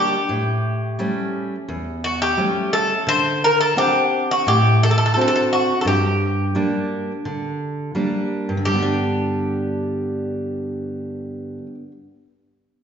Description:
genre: greek folk, Greek bouzouki band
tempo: 86 BPM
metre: 4/4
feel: straight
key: unclear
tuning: A4 = 440 Hz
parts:
  - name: Greek bouzouki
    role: melody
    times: 0.0-11.7 s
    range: F#4 to C5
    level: -20 LUFS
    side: left 1 dB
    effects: none
  - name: fingerpicked steel-string acoustic guitar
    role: accompaniment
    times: 0.0-11.9 s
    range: E2 to F#5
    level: -21 LUFS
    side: right 1 dB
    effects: none
room: wet recital hall reverb, RT60 1.5 s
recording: recorded in a church or concert hall, nothing above 7.6 kHz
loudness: -18 LUFS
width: side -7 dB against mid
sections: 0.0-8.6 A section; 8.6-11.4 B section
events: none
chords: 0.3 A7; 3.1 D7; 5.9 Gm; 8.6 G

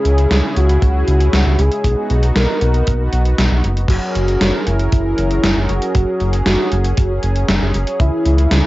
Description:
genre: synthwave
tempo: 117 BPM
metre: 4/4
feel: straight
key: F# mixolydian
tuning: A4 = 440 Hz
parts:
  - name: wide unison lead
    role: melody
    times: 0.0-8.7 s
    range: E4 to A#4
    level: -20 LUFS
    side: equal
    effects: cassette tape, analog delay
  - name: lush unison pad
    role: sustained chords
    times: 0.0-8.7 s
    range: C#3 to A#4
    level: -23 LUFS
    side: equal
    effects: chorus, sidechain pumping
  - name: round analog bass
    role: bass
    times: 0.1-8.6 s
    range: F#1 to C#2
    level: -15 LUFS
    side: equal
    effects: tube saturation, sidechain pumping
  - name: gated 80s digital drum machine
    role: drums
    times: 0.1-8.6 s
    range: crash cymbal, hi-hat, snare drum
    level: -20 LUFS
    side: equal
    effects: gated reverb, gated reverb snare, overdrive, cassette tape
  - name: kick drum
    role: drums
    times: 0.8-8.1 s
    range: none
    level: -15 LUFS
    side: equal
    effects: cassette tape
room: light reverb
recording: home recording on cassette, nothing above 7.8 kHz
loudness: -13 LUFS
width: side -17 dB against mid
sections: 0.0-8.7 A section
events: none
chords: 0.0 C#m; 1.8 B; 3.9 F#add9; 8.0 C#m

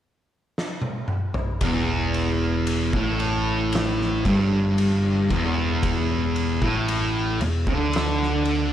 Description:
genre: stoner and doom metal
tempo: 57 BPM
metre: 4/4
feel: straight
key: E minor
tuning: A4 = 439 Hz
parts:
  - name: oversized low-tuned drum kit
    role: drums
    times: 0.6-8.7 s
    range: kick drum, ride cymbal, snare drum, toms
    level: -28 LUFS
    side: equal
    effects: none
  - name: thick fuzz guitar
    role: riff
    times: 1.6-8.7 s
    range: E2 to D3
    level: -22 LUFS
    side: equal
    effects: distortion
  - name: overdriven picked electric bass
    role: bass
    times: 1.6-8.7 s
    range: E1 to D2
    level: -26 LUFS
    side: equal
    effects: none
room: small room ambience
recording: dark, warm production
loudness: -20 LUFS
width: side -10 dB against mid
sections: 0.0-1.6 A section; 1.6-8.7 B section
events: drum fill 0.6-1.6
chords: 0.0 N.C.; 1.6 Em

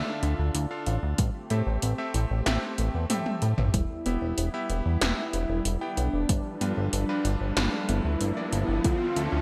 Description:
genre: synthwave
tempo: 94 BPM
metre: 4/4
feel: straight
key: unclear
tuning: A4 = 440 Hz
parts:
  - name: lush unison pad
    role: sustained chords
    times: 0.0-9.4 s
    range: D3 to E5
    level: -39 LUFS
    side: equal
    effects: chorus, phaser, sidechain pumping
  - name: thumb-piano-like synth pluck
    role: arpeggios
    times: 0.0-9.4 s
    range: G3 to B4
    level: -40 LUFS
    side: equal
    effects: none
  - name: bright electric grand piano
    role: stabs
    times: 0.0-9.4 s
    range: F3 to G5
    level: -37 LUFS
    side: equal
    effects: vintage 12-bit sampler grit, digital delay
  - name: chorused synth bass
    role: bass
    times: 0.0-9.4 s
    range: E1 to A2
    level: -30 LUFS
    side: equal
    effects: tube saturation
  - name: 80s electronic pad drums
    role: drums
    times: 0.2-9.3 s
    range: hi-hat, snare drum, toms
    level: -33 LUFS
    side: equal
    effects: gated reverb on snare and toms, gated reverb
  - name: electronic kick drum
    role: drums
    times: 1.2-9.0 s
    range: none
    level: -29 LUFS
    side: equal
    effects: overdrive
  - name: unison lead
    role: melody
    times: 3.7-9.4 s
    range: D4 to F4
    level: -35 LUFS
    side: equal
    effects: subtle chorus, delay
  - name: riser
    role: sound effects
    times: 5.9-9.4 s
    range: none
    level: -41 LUFS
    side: equal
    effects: none
room: moderate lush hall reverb, RT60 2.2 s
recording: bright 1980s-style digital production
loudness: -27 LUFS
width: mono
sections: 0.0-3.7 A section; 3.7-9.4 B section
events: drum fill 3.1-3.7; riser 5.9-9.4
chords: 0.0 Dmadd9; 1.2 Am7; 3.7 Em; 6.3 G7; 8.8 Dmadd9

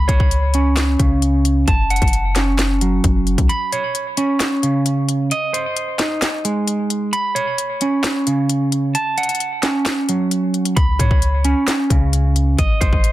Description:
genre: hip hop, trap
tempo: 132 BPM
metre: 4/4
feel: half-time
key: unclear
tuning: A4 = 440 Hz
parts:
  - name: clean electric guitar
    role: arpeggios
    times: 0.0-13.1 s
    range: C#3 to B5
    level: -18 LUFS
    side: right 2 dB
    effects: low-pass filter, ping-pong delay
  - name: warm 808-style bass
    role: bass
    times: 0.0-3.5, 10.8-13.1 s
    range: F#1 to G#2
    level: -17 LUFS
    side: equal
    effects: none
  - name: trap drum kit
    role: drums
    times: 0.1-13.1 s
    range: handclaps, hi-hat, kick drum, snare drum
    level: -19 LUFS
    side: left 1 dB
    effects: none
room: little or no reverb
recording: dense, heavily limited modern master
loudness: -15 LUFS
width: side -15 dB against mid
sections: 0.0-13.1 A section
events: break 3.5-10.8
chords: 0.0 Bsus2/C#; 1.7 F#m; 3.5 Bsus2/C#; 5.3 G#; 7.1 Bsus2/C#; 8.9 F#m; 10.8 C#5; 12.6 G#

